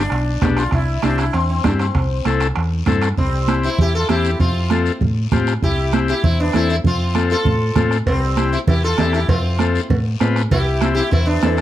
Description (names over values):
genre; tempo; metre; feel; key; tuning
latin, cumbia; 196 BPM; 4/4; straight; C major; A4 = 440 Hz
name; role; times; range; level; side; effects
sitar; melody; 0.0-11.6 s; G3 to A4; -22 LUFS; equal; none
combo organ; accompaniment; 0.0-11.6 s; B3 to B4; -23 LUFS; left 6 dB; none
hollow-body short-scale fingered electric bass; bass; 0.0-11.6 s; B1 to A2; -19 LUFS; equal; none
bombo; percussion; 0.1-11.6 s; none; -22 LUFS; right 2 dB; none
congas; percussion; 0.1-11.6 s; none; -24 LUFS; right 6 dB; none
guiro; percussion; 0.1-11.6 s; none; -35 LUFS; left 13 dB; none
timbales and cowbell; percussion; 0.1-3.2, 8.1-11.6 s; none; -28 LUFS; right 3 dB; none
room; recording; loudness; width
studio reverb; dry, close 1970s-style studio recording; -15 LUFS; side -13 dB against mid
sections
0.0-3.2 A section; 3.2-11.6 B section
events
none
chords
0.0 G; 0.7 C; 4.4 F; 5.6 C; 6.8 F; 8.1 C; 9.3 F; 10.5 C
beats
0.12 0.42 | 0.73 1.03 1.34 1.65 | 1.95 2.26 2.57 2.87 | 3.18 3.48 3.79 4.10 | 4.40 4.71 5.01 5.32 | 5.62 5.93 6.24 6.54 | 6.85 7.15 7.46 7.76 | 8.07 8.37 8.68 8.98 | 9.29 9.60 9.90 10.21 | 10.51 10.82 11.12 11.43